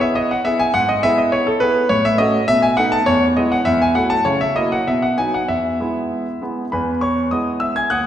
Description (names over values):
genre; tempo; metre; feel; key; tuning
classical-period piano sonatina; 102 BPM; 2/4; straight; E major; A4 = 440 Hz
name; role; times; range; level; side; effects
clear concert grand piano; solo; 0.0-8.1 s; D#2 to G#6; -15 LUFS; equal; none
room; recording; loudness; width
wet recital hall reverb, RT60 1.8 s; none; -15 LUFS; side -10 dB against mid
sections
0.0-6.7 A section; 6.7-8.1 A section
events
none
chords
0.0 E; 0.7 E/G#; 1.9 F#m/A; 2.5 B7; 3.1 E; 3.7 F#m7/E; 4.3 F#7/C#; 4.9 B; 5.5 E